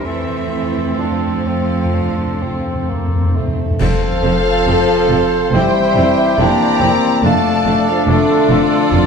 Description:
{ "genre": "classical, slow romantic movement for symphony orchestra", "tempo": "63-72 BPM", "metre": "4/4", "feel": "rubato", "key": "F major", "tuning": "A4 = 441 Hz", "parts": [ { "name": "clear symphonic violin section", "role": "melody", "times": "0.0-9.1 s", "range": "D5 to Bb5", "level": "-24 LUFS", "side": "left 2 dB", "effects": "none" }, { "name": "bright oboe", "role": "second line", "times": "0.0-9.1 s", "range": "A4 to C5", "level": "-28 LUFS", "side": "right 2 dB", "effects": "none" }, { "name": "mellow clarinet", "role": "second line", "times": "0.0-9.1 s", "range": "C4 to A4", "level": "-22 LUFS", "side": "left 3 dB", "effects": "none" }, { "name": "mellow hollow silver concert flute", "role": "second line", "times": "0.0-9.1 s", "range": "A4 to C6", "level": "-23 LUFS", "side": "left 4 dB", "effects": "none" }, { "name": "rich chamber violin section", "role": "second line", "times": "0.0-9.1 s", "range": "A3 to D5", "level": "-25 LUFS", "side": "right 2 dB", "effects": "none" }, { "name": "mellow bassoon", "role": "accompaniment", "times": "0.0-9.1 s", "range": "A3 to F4", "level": "-22 LUFS", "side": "right 2 dB", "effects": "none" }, { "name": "rich chamber viola section", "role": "accompaniment", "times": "0.0-9.0 s", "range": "A3 to A4", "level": "-24 LUFS", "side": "right 4 dB", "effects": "none" }, { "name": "clear chamber cello section", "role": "bass", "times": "0.0-9.0 s", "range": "F2 to F3", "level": "-24 LUFS", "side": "right 3 dB", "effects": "none" }, { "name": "warm symphonic double bass section", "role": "bass", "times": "0.0-9.0 s", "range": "F1 to F2", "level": "-22 LUFS", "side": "right 3 dB", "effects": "none" }, { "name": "mellow French horn section", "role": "sustained chords", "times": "0.1-9.1 s", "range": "D3 to Bb3", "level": "-20 LUFS", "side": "left 3 dB", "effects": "none" }, { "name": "cymbal swell, clash cymbals and concert bass drum", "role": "percussion", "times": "0.1-5.5 s", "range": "none", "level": "-24 LUFS", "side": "equal", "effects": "none" }, { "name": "timpani", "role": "percussion", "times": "0.1-9.1 s", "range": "F2", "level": "-22 LUFS", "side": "left 1 dB", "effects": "none" }, { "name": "clear trombone section", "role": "sustained chords", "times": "3.8-9.1 s", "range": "E3 to C4", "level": "-24 LUFS", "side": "right 3 dB", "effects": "none" }, { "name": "clear trumpet section", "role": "stabs", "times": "3.8-9.1 s", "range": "D4 to A4", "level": "-23 LUFS", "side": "right 1 dB", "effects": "none" } ], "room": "wet recital hall reverb, RT60 1.4 s", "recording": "dark, warm production", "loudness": "-12 LUFS", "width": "side -6 dB against mid", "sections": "0.0-3.8 A section; 3.8-9.1 A section", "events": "timpani fill 0.1-3.8; band accent 3.8-4.7", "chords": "0.1 F; 5.5 C/F; 7.2 Dm/F", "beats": "| 0.06 1.00 1.95 2.88 | 3.80 4.67 5.52 6.38 | 7.23 8.08 8.92" }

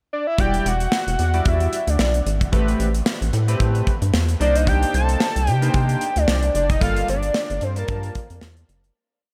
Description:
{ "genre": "early-eighties boogie funk", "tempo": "112 BPM", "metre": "4/4", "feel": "swing 56% on 16ths", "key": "E minor", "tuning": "A4 = 442 Hz", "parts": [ { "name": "fat analog lead", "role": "melody", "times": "0.1-8.4 s", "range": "Bb4 to A5", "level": "-26 LUFS", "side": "equal", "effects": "analog delay" }, { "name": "chorused polysynth", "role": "accompaniment", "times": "0.4-8.2 s", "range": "G3 to A5", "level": "-30 LUFS", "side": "equal", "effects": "none" }, { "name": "rubbery square bass", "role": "bass", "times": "0.4-8.9 s", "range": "E1 to C3", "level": "-23 LUFS", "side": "equal", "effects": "none" }, { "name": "modern studio drum kit", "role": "drums", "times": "0.4-8.9 s", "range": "hi-hat, kick drum, snare drum", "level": "-26 LUFS", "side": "equal", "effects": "none" } ], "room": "light reverb, small room ambience", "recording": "none", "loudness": "-20 LUFS", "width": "mono", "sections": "0.0-0.4 pickup bar; 0.4-9.0 verse", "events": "fade-out 6.8-9.0", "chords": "0.4 Em9; 2.5 Am9; 4.4 Cm9; 6.8 Gm9", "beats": "| 0.39 0.92 1.46 1.99 | 2.53 3.06 3.60 4.13 | 4.67 5.21 5.74 6.28 | 6.81 7.35 7.88 8.42" }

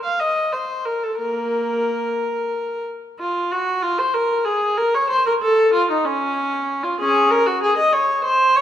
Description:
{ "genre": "classical, baroque-style suite movement for unaccompanied viola", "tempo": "59-65 BPM (dotted quarters)", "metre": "6/8", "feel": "rubato", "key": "Bb minor", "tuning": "A4 = 440 Hz", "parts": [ { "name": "rich viola", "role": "solo", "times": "0.0-8.6 s", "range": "Bb3 to F5", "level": "-17 LUFS", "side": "equal", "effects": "none" } ], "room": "moderate concert hall reverb, RT60 1.9 s", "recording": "none", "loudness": "-17 LUFS", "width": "side -10 dB against mid", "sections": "0.0-3.2 A section; 3.2-8.6 B section", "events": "none", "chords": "none", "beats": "0.21 | 1.19 2.20 | 3.20 4.16 | 5.11 6.06 | 7.00 7.94" }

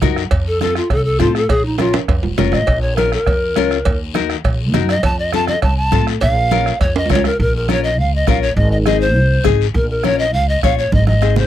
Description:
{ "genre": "latin, cumbia", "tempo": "204 BPM", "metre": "4/4", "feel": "straight", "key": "Bb harmonic minor, Bb minor from 7.4 s", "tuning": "A4 = 440 Hz", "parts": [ { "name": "nylon-string guitar", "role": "accompaniment", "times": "0.0-11.4 s", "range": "C4 to Db5", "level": "-19 LUFS", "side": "left 16 dB", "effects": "none" }, { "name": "upright bass", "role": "bass", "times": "0.0-11.5 s", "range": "Eb1 to A2", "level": "-18 LUFS", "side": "equal", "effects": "none" }, { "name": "bombo", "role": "percussion", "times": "0.0-11.4 s", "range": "none", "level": "-20 LUFS", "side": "right 1 dB", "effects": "none" }, { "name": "congas", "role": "percussion", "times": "0.0-11.4 s", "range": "none", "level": "-24 LUFS", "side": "right 5 dB", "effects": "none" }, { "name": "guiro", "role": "percussion", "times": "0.0-11.5 s", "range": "none", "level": "-31 LUFS", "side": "left 16 dB", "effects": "none" }, { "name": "timbales and cowbell", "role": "percussion", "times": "0.0-7.3 s", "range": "none", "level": "-23 LUFS", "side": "right 5 dB", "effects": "none" }, { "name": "breathy bright polished pan flute", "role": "melody", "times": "0.5-11.5 s", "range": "Eb4 to A5", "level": "-18 LUFS", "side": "equal", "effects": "none" } ], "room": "little or no reverb", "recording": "dry, close 1970s-style studio recording", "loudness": "-13 LUFS", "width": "side -12 dB against mid", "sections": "0.0-7.4 A section; 7.4-11.5 B section", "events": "pan flute solo 0.0-7.4; drum fill 1.8-2.7, 7.0-7.4, 10.9-11.5", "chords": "0.3 F; 1.5 Bbm; 3.9 Ebm; 5.0 F; 6.2 Bbm; 8.6 Ab; 9.7 Bbm; 10.9 Ab", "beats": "0.03 | 0.32 0.62 0.91 1.21 | 1.50 1.80 2.09 2.39 | 2.68 2.98 3.27 3.56 | 3.86 4.16 4.45 4.74 | 5.04 5.33 5.63 5.92 | 6.22 6.51 6.80 7.10 | 7.39 7.69 7.98 8.28 | 8.57 8.87 9.16 9.46 | 9.75 10.04 10.34 10.63 | 10.93 11.22" }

